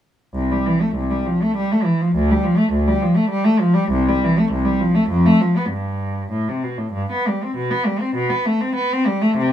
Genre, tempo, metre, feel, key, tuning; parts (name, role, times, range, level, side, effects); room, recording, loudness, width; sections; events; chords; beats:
classical, baroque-style suite movement for unaccompanied cello; 100 BPM; 3/4; uneven beats, rubato; C major; A4 = 440 Hz
warm cello; solo; 0.3-9.5 s; C2 to C4; -16 LUFS; equal
light reverb; minimal, uncompressed stereo recording; -16 LUFS; side -10 dB against mid
0.3-9.5 A section
| 0.34 0.96 1.56 | 2.14 2.72 3.30 | 3.91 4.50 5.09 | 5.71 6.32 6.93 | 7.54 8.14 8.74 | 9.36